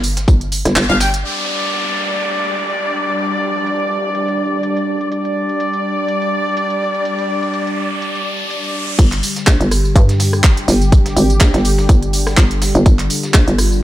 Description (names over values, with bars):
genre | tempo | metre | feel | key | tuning
bass house | 124 BPM | 4/4 | swing 55% on 16ths | unclear | A4 = 439 Hz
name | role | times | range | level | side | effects
hollow knocking FM bass | bass | 0.0-1.2, 9.0-13.8 s | G1 to G2 | -15 LUFS | equal | sidechain pumping
dusty soul sampler-style drum kit | drums | 0.0-1.1, 9.0-13.7 s | hi-hat, snare drum, tambourine | -29 LUFS | left 1 dB | none
garage drum kit | drums | 0.0-13.8 s | crash cymbal, handclaps, hi-hat, rim click, tambourine | -20 LUFS | right 1 dB | low-pass filter on hats, low-pass filter on perc, low-pass filter on snare, low-pass filter on cymbals, low-pass filter on room
electronic kick drum | drums | 0.3-0.4, 9.0-13.4 s | none | -11 LUFS | equal | none
clear horn section | stabs | 0.9-9.0 s | G3 to G5 | -19 LUFS | left 1 dB | sidechain pumping, tape echo
sweeping resonant pad | sustained chords | 1.2-13.8 s | D3 to D5 | -22 LUFS | equal | chorus, sidechain pumping
downlifter and riser | sound effects | 1.2-9.0 s | none | -25 LUFS | right 1 dB | none
room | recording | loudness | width
light reverb | none | -13 LUFS | side -14 dB against mid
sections
0.0-1.2 A section; 1.2-9.0 B section; 9.0-13.8 C section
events
kick drops out 0.8-1.2; band accent 0.8; riser 5.1-9.0; drop 9.0-13.8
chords
0.0 G5